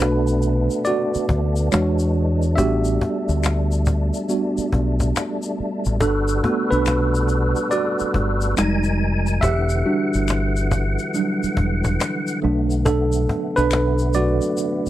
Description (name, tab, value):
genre	R&B, neo-soul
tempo	70 BPM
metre	4/4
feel	swing 64% on 16ths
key	unclear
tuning	A4 = 441 Hz
part	mellow tine electric piano	accompaniment	0.0-14.9 s	F#3 to E5	-21 LUFS	right 2 dB	medium stereo tremolo
part	percussive tonewheel organ	sustained chords	0.0-14.9 s	D3 to Ab5	-27 LUFS	left 2 dB	slow rotary speaker, overdrive, chorus vibrato
part	deep dub fingered electric bass	bass	0.0-14.9 s	E1 to E2	-21 LUFS	equal	none
part	cajon	drums	0.0-14.9 s	none	-23 LUFS	equal	none
part	tube shaker and finger snaps	percussion	0.3-14.9 s	none	-33 LUFS	left 8 dB	none
room	studio ambience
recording	dry, close 1970s-style studio recording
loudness	-18 LUFS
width	side -14 dB against mid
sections	0.0-14.9 A section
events	tine electric piano solo 0.0-14.9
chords	0.0 Bm7; 1.7 E13; 2.6 A13sus4; 6.0 Gmaj9; 8.6 Fm9; 9.4 Em9; 12.4 Bm7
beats	0.00 0.86 1.72 | 2.57 3.43 4.29 5.14 | 6.00 6.86 7.72 8.57 | 9.43 10.29 11.14 12.00 | 12.86 13.72 14.57